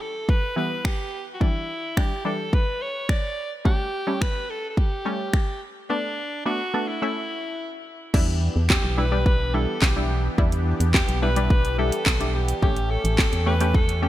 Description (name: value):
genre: dance-pop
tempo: 107 BPM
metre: 4/4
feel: straight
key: E dorian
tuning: A4 = 440 Hz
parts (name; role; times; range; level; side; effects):
- edgy alto saxophone; melody; 0.0-14.1 s; D4 to D5; -29 LUFS; equal; ping-pong delay
- punchy chord stab; accompaniment; 0.0-14.1 s; E3 to G4; -29 LUFS; left 1 dB; chorus, sidechain pumping
- house drum kit; drums; 0.3-14.0 s; crash cymbal, finger snaps, handclaps, hi-hat, kick drum, snare drum; -22 LUFS; equal; gated reverb
- soft supersaw; sustained chords; 8.1-14.1 s; E3 to G4; -32 LUFS; equal; phaser, sidechain pumping
- organ-like FM bass; bass; 8.1-14.1 s; A1 to E2; -23 LUFS; equal; sidechain pumping
room: light reverb, digital ambience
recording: bright 1980s-style digital production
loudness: -21 LUFS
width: side -14 dB against mid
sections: 0.0-8.1 A section; 8.1-14.1 B section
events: break 5.9-8.1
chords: 0.0 Em7; 3.7 A7; 5.9 Bm7; 7.0 A; 8.1 Em7; 12.6 A7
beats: 0.29 0.85 | 1.41 1.97 2.53 3.09 | 3.65 4.21 4.77 5.33 | 5.90 6.46 7.02 7.58 | 8.14 8.70 9.26 9.82 | 10.38 10.94 11.50 12.06 | 12.62 13.19 13.75